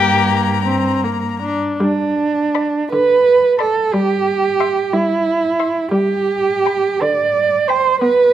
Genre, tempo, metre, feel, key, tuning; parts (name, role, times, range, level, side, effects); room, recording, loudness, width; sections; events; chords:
classical, slow romantic movement for string quartet; 52-61 BPM (dotted quarters); 6/8; rubato; G major; A4 = 441 Hz
muted violin; melody; 0.0-7.9 s; Bb5 to C6; -24 LUFS; left 12 dB
muted violin; second line; 0.0-7.9 s; G4 to G5; -20 LUFS; left 6 dB
muted viola; accompaniment; 0.0-8.3 s; D3 to D4; -21 LUFS; left 1 dB
muted cello; bass; 0.0-8.3 s; G2 to D5; -15 LUFS; right 4 dB
moderate recital hall reverb, RT60 1.3 s; -14 LUFS; side -11 dB against mid
0.0-1.8 A section; 1.8-8.3 B section
0.0 Gm; 1.8 G; 3.9 C/G; 5.9 G